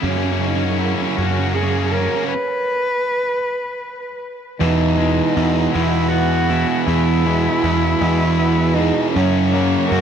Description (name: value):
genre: post-rock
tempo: 53 BPM (dotted quarters)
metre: 6/8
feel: straight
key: E lydian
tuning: A4 = 440 Hz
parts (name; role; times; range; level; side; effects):
- rich chamber string section; sustained chords; 0.0-10.0 s; G#4 to C#6; -32 LUFS; left 2 dB; none
- twangy electric guitar; arpeggios; 0.0-10.0 s; E2 to F#4; -26 LUFS; left 5 dB; digital delay
- vibraphone with soft mallets; arpeggios; 0.0-10.0 s; G#4 to F#5; -30 LUFS; right 6 dB; digital delay
- fuzz guitar; riff; 0.0-10.0 s; E2 to F#3; -22 LUFS; right 14 dB; distortion
- tight distorted guitar; riff; 0.0-10.0 s; E2 to C#4; -25 LUFS; left 13 dB; distortion
- fuzz picked electric bass; bass; 0.0-10.0 s; E2 to F#2; -20 LUFS; equal; overdrive
- muted cello; melody; 0.4-10.0 s; C#4 to B4; -21 LUFS; equal; digital delay
room: light reverb, studio ambience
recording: dark, warm production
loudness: -16 LUFS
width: side -8 dB against mid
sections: 0.0-4.6 A section; 4.6-10.0 B section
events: build-up 0.0-4.6; stop 2.3-4.6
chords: 0.0 F#; 2.3 N.C.; 4.6 E; 9.2 F#